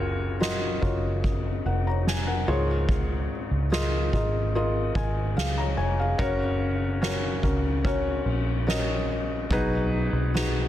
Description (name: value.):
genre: pop ballad.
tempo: 72 BPM.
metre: 4/4.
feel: straight.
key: F# major.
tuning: A4 = 440 Hz.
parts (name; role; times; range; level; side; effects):
felt-muted upright piano; accompaniment; 0.0-10.7 s; G#2 to A#5; -28 LUFS; left 1 dB; none.
vintage muted fingered electric bass; bass; 0.0-10.7 s; E#1 to C#2; -28 LUFS; equal; none.
soft-mallet drum kit; drums; 0.4-10.5 s; kick drum, ride cymbal, snare drum; -29 LUFS; equal; none.
room: studio reverb.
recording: dense, heavily limited modern master.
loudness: -23 LUFS.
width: side -12 dB against mid.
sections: 0.0-10.7 A section.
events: felt piano fill 4.5-6.2, 10.3-10.7.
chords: 0.0 F#maj7; 6.2 F#; 9.5 B6.